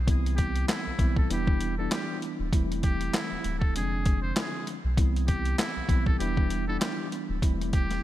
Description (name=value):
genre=hip hop, boom-bap hip-hop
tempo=98 BPM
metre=4/4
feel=swing 57% on 16ths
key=C major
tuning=A4 = 440 Hz
part: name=soft dub sub bass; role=bass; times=0.0-8.0 s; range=D1 to C2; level=-30 LUFS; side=equal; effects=none
part: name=mellow tine electric piano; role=accompaniment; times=0.1-8.0 s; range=D3 to E4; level=-32 LUFS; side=equal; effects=medium stereo tremolo, high-pass filter, low-pass filter
part: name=boom bap sampler-style drum kit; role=drums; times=0.1-8.0 s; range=handclaps, hi-hat, kick drum, snare drum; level=-27 LUFS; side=equal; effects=gated reverb
part: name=trumpet with metal mute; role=melody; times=0.4-8.0 s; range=E4 to C5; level=-35 LUFS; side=equal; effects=high-pass filter, low-pass filter, digital delay
room=light reverb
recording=bright 1980s-style digital production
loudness=-25 LUFS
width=side -14 dB against mid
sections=0.0-8.0 A section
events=none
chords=0.1 Cmaj7; 1.3 Em7; 2.5 Am7/E; 3.8 Fm6; 5.0 Cmaj7; 6.2 Em7; 7.4 Am7/E